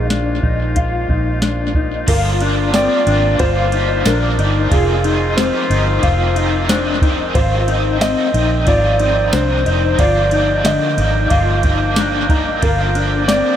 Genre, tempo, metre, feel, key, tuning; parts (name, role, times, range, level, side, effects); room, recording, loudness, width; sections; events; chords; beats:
dream pop; 91 BPM; 4/4; straight; A4 = 439 Hz
felt-muted upright piano; melody; 0.0-13.6 s; Ab4 to Eb5; -20 LUFS; right 1 dB; tape echo, shimmer reverb
clear woodwind section; sustained chords; 0.0-13.6 s; Bb2 to G5; -24 LUFS; right 2 dB; shimmer reverb
mellow electric guitar; arpeggios; 0.0-13.6 s; D3 to F4; -20 LUFS; left 5 dB; ensemble chorus, tape echo, shimmer reverb
vintage muted fingered electric bass; bass; 0.0-13.4 s; F1 to C2; -19 LUFS; right 1 dB
soft vintage rhythm box; drums; 0.1-13.4 s; crash cymbal, hi-hat, kick drum, ride cymbal, snare drum, tambourine; -19 LUFS; equal; tape echo
raw garage guitar; accompaniment; 2.1-13.6 s; F2 to G4; -23 LUFS; right 2 dB; overdrive, tremolo, ensemble chorus, tape echo, shimmer reverb
soft synth bell; texture; 2.7-12.9 s; C5 to Bb5; -31 LUFS; equal
moderate spring reverb, RT60 2.4 s; echo-heavy mix; -13 LUFS; side -10 dB against mid
0.0-2.1 A section; 2.1-13.6 B section
0.0 Bb7sus4; 2.1 Gm7; 4.7 Fm9; 7.4 Abmaj7; 10.0 Ebmaj7/G; 12.6 Gm7
0.10 0.76 1.42 | 2.08 2.73 3.40 4.05 | 4.71 5.37 6.03 6.69 | 7.35 8.01 8.67 9.33 | 9.99 10.65 11.31 11.97 | 12.62 13.29